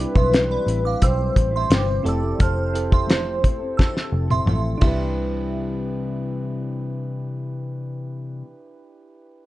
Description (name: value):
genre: indie pop, bedroom pop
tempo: 87 BPM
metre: 4/4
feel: straight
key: C major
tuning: A4 = 442 Hz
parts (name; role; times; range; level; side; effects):
- warm velvety synth lead; melody; 0.0-4.4 s; B4 to D5; -25 LUFS; equal; lush chorus, tape echo
- mellow electric guitar; accompaniment; 0.0-8.5 s; C3 to B4; -29 LUFS; left 4 dB; lush chorus, warbly pitch drift
- soft electric-piano-like synth keys; accompaniment; 0.0-9.5 s; C4 to B4; -31 LUFS; right 3 dB; chorus
- vintage muted picked electric bass; bass; 0.0-8.4 s; F1 to C2; -24 LUFS; equal; none
- glassy synth bell; second line; 0.2-7.2 s; D5 to F6; -30 LUFS; right 5 dB; tremolo, analog chorus, tape echo
- cloth-damped thuddy drum kit; drums; 0.2-5.0 s; hi-hat, kick drum, ride cymbal, snare drum, toms; -19 LUFS; equal; vintage 12-bit sampler grit
room: moderate small room reverb, RT60 0.6 s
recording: nothing above 10.7 kHz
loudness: -19 LUFS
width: side -16 dB against mid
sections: 0.0-5.2 A section; 5.2-7.9 B section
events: drum fill 3.8-5.2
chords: 0.0 Cmaj7; 2.0 Fmaj7; 4.8 Cmaj7